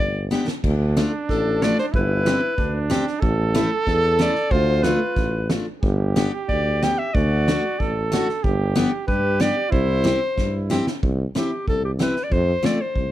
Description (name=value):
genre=alpine folk, alpine dance band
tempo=93 BPM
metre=2/4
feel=straight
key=C major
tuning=A4 = 443 Hz
part: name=bright clarinet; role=melody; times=0.0-13.1 s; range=G4 to G5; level=-23 LUFS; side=left 2 dB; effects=none
part: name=mellow tuba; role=bass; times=0.0-13.1 s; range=G1 to G2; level=-23 LUFS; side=equal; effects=none
part: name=picked steel-string acoustic guitar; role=accompaniment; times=0.3-12.8 s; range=A3 to G4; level=-24 LUFS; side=left 2 dB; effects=none
part: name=loose indie drum kit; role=drums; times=0.3-13.1 s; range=crash cymbal, kick drum, snare drum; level=-26 LUFS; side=equal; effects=none
part: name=mellow trumpet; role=second line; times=0.6-11.0 s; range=D4 to A4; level=-27 LUFS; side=right 5 dB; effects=none
room=small room ambience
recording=none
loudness=-18 LUFS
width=side -13 dB against mid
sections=0.0-11.0 A section; 11.0-13.1 B section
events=drum fill 0.3-0.6, 10.4-11.0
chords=0.0 G; 0.6 Dm; 1.9 Gsus4; 3.2 A; 4.5 Dm; 5.8 G; 7.1 D; 8.4 G; 9.7 C; 12.3 F